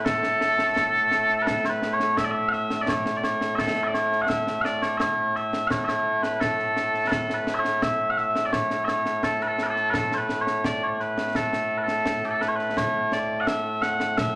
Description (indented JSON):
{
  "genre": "scottish traditional, Scottish pipe music",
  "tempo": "85 BPM",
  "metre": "2/4",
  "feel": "straight",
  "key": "A major",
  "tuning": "A4 = 436 Hz",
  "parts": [
    { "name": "mellow small bagpipes", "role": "melody", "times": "0.0-14.4 s", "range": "A2 to F#5", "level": "-25 LUFS", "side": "equal", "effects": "none" },
    { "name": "concert snare drum and concert bass drum", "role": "drums", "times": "0.1-14.3 s", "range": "none", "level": "-33 LUFS", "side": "equal", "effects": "none" }
  ],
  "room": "moderate large studio reverb, RT60 1.2 s",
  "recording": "none",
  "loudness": "-25 LUFS",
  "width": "mono",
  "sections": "0.0-1.5 A section; 1.5-12.8 A section; 12.8-14.4 B section",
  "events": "none",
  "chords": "none",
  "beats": "| 0.06 0.76 | 1.47 2.17 | 2.88 3.59 | 4.29 5.00 | 5.71 6.41 | 7.12 7.82 | 8.53 9.23 | 9.94 10.65 | 11.35 12.06 | 12.76 13.47 | 14.18"
}